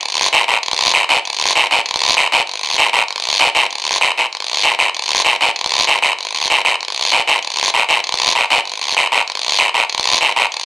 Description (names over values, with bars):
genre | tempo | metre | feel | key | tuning
latin | 194 BPM | 4/4 | straight | none | none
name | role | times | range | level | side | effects
guiro | percussion | 0.0-10.7 s | none | -11 LUFS | equal | none
room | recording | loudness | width
moderate studio reverb, RT60 0.6 s | home recording on cassette | -11 LUFS | side -21 dB against mid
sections
0.0-3.7 A section; 3.7-10.7 B section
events
none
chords
none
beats
| 0.02 0.32 0.63 0.94 | 1.25 1.56 1.86 2.17 | 2.48 2.79 3.10 3.41 | 3.71 4.02 4.33 4.64 | 4.95 5.26 5.57 5.88 | 6.19 6.50 6.80 7.11 | 7.42 7.73 8.04 8.35 | 8.66 8.97 9.28 9.59 | 9.90 10.21 10.52